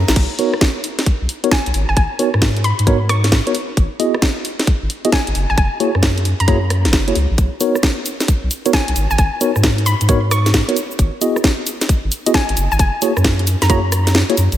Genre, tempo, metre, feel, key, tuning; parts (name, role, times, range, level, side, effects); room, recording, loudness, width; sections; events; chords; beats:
UK garage, two-step garage; 133 BPM; 4/4; swing 66% on 16ths; A4 = 440 Hz
soft dub sub bass; bass; 0.0-14.6 s; F#1 to G#2; -17 LUFS; equal
garage drum kit; drums; 0.1-14.6 s; cabasa, crash cymbal, hi-hat, rim click, snare drum; -20 LUFS; equal; studio reverb
electronic kick drum; drums; 0.2-13.8 s; -16 LUFS; equal; studio reverb
mellow tine electric piano; stabs; 0.4-14.3 s; A#3 to D#5; -21 LUFS; equal; medium stereo tremolo, analog delay
hollow square pluck; melody; 1.5-13.8 s; G#5 to C#6; -23 LUFS; left 1 dB; chorus, analog delay
moderate lush hall reverb, RT60 2.0 s, digital ambience; dreamy mix soaked in reverb, faint mains hum; -14 LUFS; side -12 dB against mid
0.2-14.6 A section
drum fill 0.0; kick drops out 14.1-14.6
0.2 Bmaj7; 1.7 G#m11; 3.5 Emaj9/G#; 5.6 F#9; 7.4 Bmaj7; 9.0 G#m11; 10.8 Emaj9/G#; 12.8 F#9
| 0.16 0.61 1.06 1.52 | 1.97 2.42 2.87 3.32 | 3.77 4.22 4.67 5.12 | 5.58 6.03 6.48 6.93 | 7.38 7.83 8.28 8.73 | 9.19 9.64 10.09 10.54 | 10.99 11.44 11.89 12.34 | 12.79 13.24 13.70 14.15